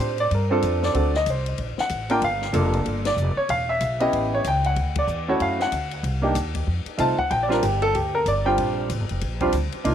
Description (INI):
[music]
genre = jazz piano trio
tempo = 188 BPM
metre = 4/4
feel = swing 61% on 8ths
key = Bb major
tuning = A4 = 439 Hz
[part]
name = clear baby grand piano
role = melody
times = 0.0-9.9 s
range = G3 to A5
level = -22 LUFS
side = equal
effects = tape echo
[part]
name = upright bass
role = bass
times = 0.0-9.9 s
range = E1 to A2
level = -26 LUFS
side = equal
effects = none
[part]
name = compact cocktail drum kit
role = drums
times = 0.2-9.9 s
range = hi-hat, kick drum, ride cymbal, snare drum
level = -33 LUFS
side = left 6 dB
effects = none
[sound]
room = light reverb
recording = 1960s-style stereo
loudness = -20 LUFS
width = side -9 dB against mid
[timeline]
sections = 0.0-9.8 A section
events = band accent 3.0, 4.9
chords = 0.0 Bb6; 0.9 D7; 2.2 Gm7; 3.5 E5; 4.1 A7; 4.8 Dmaj7; 6.0 Cm; 6.7 F7; 7.3 Bb6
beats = 0.30 0.62 | 0.94 1.26 1.58 1.90 | 2.21 2.53 2.85 3.17 | 3.49 3.81 4.13 4.45 | 4.76 5.08 5.40 5.72 | 6.04 6.35 6.67 6.99 | 7.31 7.62 7.94 8.26 | 8.58 8.89 9.21 9.53 | 9.84